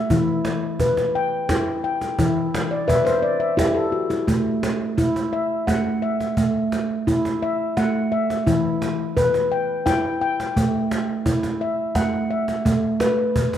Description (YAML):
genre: world meditative, meditative tuned percussion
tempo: 57 BPM (dotted quarters)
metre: 6/8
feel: straight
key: unclear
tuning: A4 = 440 Hz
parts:
  - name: handpan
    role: arpeggios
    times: 0.0-13.6 s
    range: E3 to G5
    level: -20 LUFS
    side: equal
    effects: none
  - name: cajon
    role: percussion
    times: 0.1-13.6 s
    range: none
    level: -26 LUFS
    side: right 1 dB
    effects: none
room: wet echo chamber reverb, RT60 2.1 s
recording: none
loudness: -19 LUFS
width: side -10 dB against mid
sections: 0.0-12.7 A section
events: handpan fill 2.7-4.3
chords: 0.1 Em; 4.3 A5; 8.5 Em; 10.6 A5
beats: | 0.11 1.15 | 2.19 3.24 | 4.28 5.33 | 6.38 7.42 | 8.47 9.52 | 10.56 11.61 | 12.66